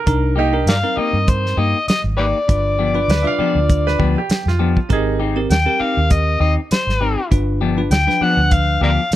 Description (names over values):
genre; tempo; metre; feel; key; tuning
straight-eighth soul blues; 100 BPM; 4/4; swing 55% on 16ths; unclear; A4 = 440 Hz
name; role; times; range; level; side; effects
bright upright piano; second line; 0.0-5.4 s; Eb4 to F5; -23 LUFS; right 5 dB; none
bell-like tine electric piano; accompaniment; 0.1-8.8 s; F3 to B4; -23 LUFS; right 2 dB; phaser
vintage muted fingered electric bass; bass; 0.1-9.1 s; G1 to G2; -19 LUFS; equal; none
warm soul drum kit; drums; 0.1-9.2 s; hi-hat, kick drum, snare drum; -18 LUFS; right 1 dB; none
semi-hollow electric guitar; stabs; 0.4-9.0 s; F3 to G4; -23 LUFS; left 5 dB; none
overdriven harmonica; melody; 0.7-9.1 s; G4 to G5; -19 LUFS; left 3 dB; none
room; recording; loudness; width
little or no reverb; none; -14 LUFS; side -13 dB against mid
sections
0.0-9.2 A section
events
none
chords
0.1 Cm7; 2.5 G7; 4.9 Abmaj7; 7.3 G7